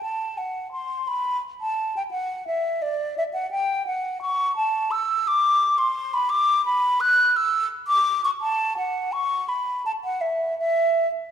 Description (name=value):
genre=classical, baroque-style fantasia for unaccompanied flute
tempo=86 BPM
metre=3/4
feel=rubato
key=D major from 4.2 s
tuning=A4 = 440 Hz
part: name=mellow hollow concert flute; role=solo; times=0.0-11.1 s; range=D5 to F#6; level=-21 LUFS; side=equal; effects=none
room=moderate scoring stage reverb, RT60 1.9 s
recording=small room ambience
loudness=-21 LUFS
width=side -8 dB against mid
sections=0.0-11.3 A section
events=none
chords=none